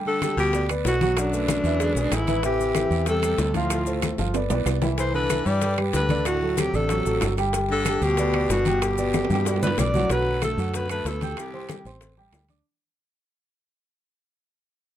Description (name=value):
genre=Afro-Cuban jazz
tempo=188 BPM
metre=4/4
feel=straight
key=G major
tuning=A4 = 438 Hz
part: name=warm concert grand piano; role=accompaniment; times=0.0-12.6 s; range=D3 to G6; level=-28 LUFS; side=right 1 dB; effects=none
part: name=breathy alto saxophone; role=melody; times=0.1-12.0 s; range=D4 to D5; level=-26 LUFS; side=equal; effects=none
part: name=bright baritone saxophone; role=second line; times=0.1-12.0 s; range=C2 to G3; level=-31 LUFS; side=left 6 dB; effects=none
part: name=bongos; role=percussion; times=0.1-12.7 s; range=none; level=-34 LUFS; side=left 6 dB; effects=none
part: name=congas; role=percussion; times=0.1-12.7 s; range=none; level=-31 LUFS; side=left 2 dB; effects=none
part: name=claves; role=percussion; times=0.2-12.5 s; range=none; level=-37 LUFS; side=left 8 dB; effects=none
part: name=guiro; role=percussion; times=0.2-12.7 s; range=none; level=-40 LUFS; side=right 10 dB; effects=none
part: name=maracas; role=percussion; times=0.2-12.7 s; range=none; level=-38 LUFS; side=left 6 dB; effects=none
part: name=timbales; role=percussion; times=0.2-12.6 s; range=none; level=-32 LUFS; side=right 9 dB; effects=none
part: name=fingered electric bass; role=bass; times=0.4-12.6 s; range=G1 to G2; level=-26 LUFS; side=equal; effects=none
room=little or no reverb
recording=close, detailed microphones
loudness=-21 LUFS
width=side -11 dB against mid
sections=0.0-10.1 A section; 10.1-12.7 B section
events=drum fill 4.2-5.0, 9.1-10.1; fade-out 10.1-12.7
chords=0.0 Gmaj7; 1.2 Bm7; 1.8 E7; 2.4 Am7; 3.7 Dm7; 4.3 G; 5.0 Cmaj9; 6.3 D7; 7.5 Gmaj7; 10.1 Bm7; 11.4 D7sus4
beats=0.22 0.54 0.85 | 1.17 1.49 1.80 2.12 | 2.44 2.75 3.07 3.39 | 3.71 4.03 4.35 4.67 | 4.98 5.30 5.62 5.94 | 6.26 6.58 6.90 7.22 | 7.54 7.86 8.18 8.50 | 8.82 9.14 9.46 9.78 | 10.10 10.42 10.74 11.05 | 11.37 11.69 12.01 12.33